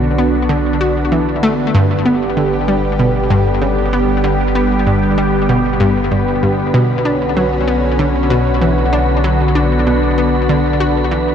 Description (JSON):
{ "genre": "ambient, sequencer-driven space music", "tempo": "96 BPM", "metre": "4/4", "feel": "straight", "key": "B minor", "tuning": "A4 = 439 Hz", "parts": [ { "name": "lush unison pad", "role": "sustained chords", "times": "0.0-11.3 s", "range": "D3 to G4", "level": "-16 LUFS", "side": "equal", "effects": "chorus, phaser" }, { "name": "analog pluck", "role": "riff", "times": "0.0-11.3 s", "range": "G2 to F#4", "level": "-16 LUFS", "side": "equal", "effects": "chorus, vintage 12-bit sampler grit, ping-pong delay" }, { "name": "warm sub bass", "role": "bass", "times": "0.0-11.3 s", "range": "G1 to B1", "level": "-20 LUFS", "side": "equal", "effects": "none" }, { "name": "wind-like tuned noise texture", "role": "texture", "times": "0.0-11.3 s", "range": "B4 to B5", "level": "-27 LUFS", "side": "left 3 dB", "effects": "built-in reverb" } ], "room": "wet cathedral reverb, RT60 5.1 s", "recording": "in a vast, echoing space", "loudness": "-12 LUFS", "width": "side -8 dB against mid", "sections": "0.0-11.3 A section", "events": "fade-in on synth texture 0.0-11.3", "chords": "0.0 Bm; 1.7 G; 6.7 Bmadd9" }